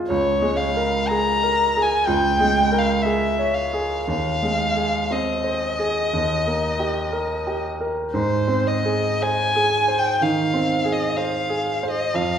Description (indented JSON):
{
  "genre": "classical, romantic duo for violin and grand piano",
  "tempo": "60 BPM",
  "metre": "4/4",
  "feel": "uneven beats, rubato",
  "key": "Ab major",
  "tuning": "A4 = 441 Hz",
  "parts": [
    { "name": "bright baby grand piano", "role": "accompaniment", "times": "0.0-12.4 s", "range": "Db2 to Db5", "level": "-22 LUFS", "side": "right 2 dB", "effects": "none" },
    { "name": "warm violin", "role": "melody", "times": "0.1-12.4 s", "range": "C5 to Bb5", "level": "-21 LUFS", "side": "left 2 dB", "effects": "none" }
  ],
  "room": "wet recital hall reverb, RT60 1.4 s",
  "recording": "heard from further back in the room",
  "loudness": "-19 LUFS",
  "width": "side -8 dB against mid",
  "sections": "0.0-12.4 A section",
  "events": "none",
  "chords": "0.1 Bbm7/Db; 4.1 Ab/Eb; 6.1 Eb; 8.1 Ab"
}